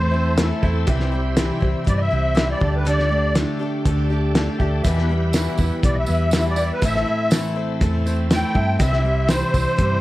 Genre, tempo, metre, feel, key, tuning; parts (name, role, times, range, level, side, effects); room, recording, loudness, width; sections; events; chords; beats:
folk rock and heartland rock; 121 BPM; 4/4; straight; A4 = 437 Hz
musette accordion; melody; 0.0-10.0 s; B4 to G5; -22 LUFS; equal
picked twelve-string acoustic guitar; accompaniment; 0.0-10.0 s; E2 to G4; -29 LUFS; left 5 dB
bright tonewheel organ; sustained chords; 0.0-10.0 s; D4 to C5; -34 LUFS; right 1 dB; slow rotary speaker, chorus vibrato
mellow electric guitar; riff; 0.0-10.0 s; E2 to G4; -25 LUFS; right 1 dB
hollow-body short-scale fingered electric bass; bass; 0.0-10.0 s; A1 to G2; -22 LUFS; equal
cloth-damped thuddy drum kit; drums; 0.4-9.9 s; hi-hat, kick drum, snare drum; -21 LUFS; equal
clear grand piano; accompaniment; 0.6-9.6 s; G4 to A5; -34 LUFS; right 4 dB
tambourine; percussion; 4.8-9.9 s; -37 LUFS; right 5 dB
light reverb; dark, warm production; -17 LUFS; side -17 dB against mid
0.0-10.0 A section
accordion solo 0.0-10.0; grand piano fill 4.1-4.8
0.0 Am; 0.9 C; 2.6 Gsus2/D; 4.8 Em; 6.8 Am; 8.8 C
0.39 | 0.88 1.38 1.87 2.37 | 2.86 3.36 3.85 4.35 | 4.84 5.34 5.83 6.33 | 6.82 7.32 7.81 8.30 | 8.80 9.29 9.78